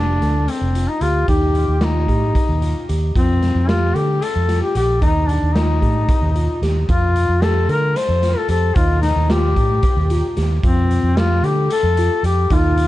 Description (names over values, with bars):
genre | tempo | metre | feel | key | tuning
progressive instrumental, band music in an uneven meter | 224 BPM (eighths) | 7/8 | straight | F mixolydian | A4 = 440 Hz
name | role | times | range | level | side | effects
warm duduk | melody | 0.0-12.9 s | C4 to C5 | -20 LUFS | left 3 dB | digital delay
mellow tine electric piano | arpeggios | 0.0-12.9 s | Eb4 to A4 | -26 LUFS | right 1 dB | phaser
fingered electric bass | bass | 0.0-12.9 s | F1 to D3 | -18 LUFS | equal | none
raw garage drum kit | drums | 0.2-12.9 s | hi-hat, kick drum, snare drum | -21 LUFS | equal | none
room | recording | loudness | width
light reverb | dark, warm production, nothing above 10.4 kHz | -15 LUFS | side -15 dB against mid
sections
0.0-12.9 A section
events
none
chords
0.0 Fadd9; 1.3 Ebadd9; 3.2 Fadd9; 5.0 Ebadd9(#11); 6.9 Fadd9; 8.8 Ebadd9; 10.6 Fadd9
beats
0.22 0.48 0.75 1.02 | 1.28 1.55 1.82 2.08 2.35 2.62 2.89 | 3.15 3.42 3.69 3.95 4.22 4.49 4.75 | 5.02 5.29 5.56 5.82 6.09 6.36 6.62 | 6.89 7.16 7.43 7.69 7.96 8.23 8.50 | 8.76 9.03 9.30 9.57 9.83 10.10 10.37 | 10.63 10.90 11.17 11.44 11.71 11.97 12.24 | 12.51 12.77